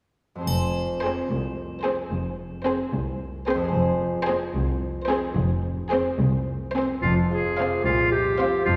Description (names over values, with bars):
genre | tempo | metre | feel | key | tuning
cinematic, playful, whimsical film cue | 74 BPM (dotted quarters) | 6/8 | straight | F minor | A4 = 440 Hz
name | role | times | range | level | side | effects
concert harp | arpeggios | 0.4-8.8 s | F2 to C5 | -32 LUFS | equal | none
rich chamber cello section | bass | 0.5-8.8 s | C2 to F2 | -33 LUFS | equal | none
rich chamber double bass section | bass | 0.5-8.8 s | F1 to C2 | -31 LUFS | equal | none
triangle | percussion | 0.5-1.5 s | none | -41 LUFS | equal | none
rich chamber violin section | melody | 1.0-8.6 s | C5 to F5 | -34 LUFS | equal | none
rich chamber violin section | second line | 1.0-8.6 s | Ab4 to C5 | -35 LUFS | equal | none
rich chamber viola section | accompaniment | 1.0-8.6 s | C4 | -33 LUFS | equal | none
bright clarinet | second line | 6.7-8.8 s | C4 to Ab4 | -25 LUFS | equal | none
room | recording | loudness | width
wet scoring stage reverb, RT60 2.1 s | heard from further back in the room | -25 LUFS | mono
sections
0.5-7.0 A section; 7.0-8.8 B section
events
none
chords
0.5 Fm